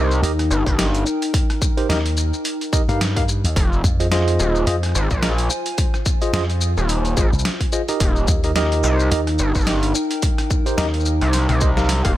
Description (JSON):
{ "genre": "glitch hop", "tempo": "108 BPM", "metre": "4/4", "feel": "swing 57% on 16ths", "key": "unclear", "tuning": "A4 = 440 Hz", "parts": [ { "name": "tine electric piano", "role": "stabs", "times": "0.0-12.1 s", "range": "Eb4 to F5", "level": "-24 LUFS", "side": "right 1 dB", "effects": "medium stereo tremolo, sidechain pumping, tape echo" }, { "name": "gritty driven synth bass", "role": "bass", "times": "0.0-12.2 s", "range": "Eb1 to C2", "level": "-19 LUFS", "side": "equal", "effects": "distortion, overdrive" }, { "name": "warbly tape-like pad", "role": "texture", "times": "0.0-12.2 s", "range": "Eb4 to Ab5", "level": "-26 LUFS", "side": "left 1 dB", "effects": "chorus, built-in reverb, sidechain pumping" }, { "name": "boom bap sampler-style drum kit", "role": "drums", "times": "0.1-12.1 s", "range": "hi-hat, rim click, shaker, snare drum, toms", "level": "-25 LUFS", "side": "left 1 dB", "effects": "overdrive, small room ambience" }, { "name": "slap bass with an envelope filter", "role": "bass", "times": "0.2-11.2 s", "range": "C2 to G2", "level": "-20 LUFS", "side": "equal", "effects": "none" }, { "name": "electronic kick drum", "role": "drums", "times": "0.7-12.1 s", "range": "none", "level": "-20 LUFS", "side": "equal", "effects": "overdrive, small room ambience" } ], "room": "little or no reverb", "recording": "none", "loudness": "-17 LUFS", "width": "side -14 dB against mid", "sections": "0.0-12.2 A section", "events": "drum fill 11.3-12.2", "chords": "0.0 Eb; 3.6 Fm7; 8.0 Eb" }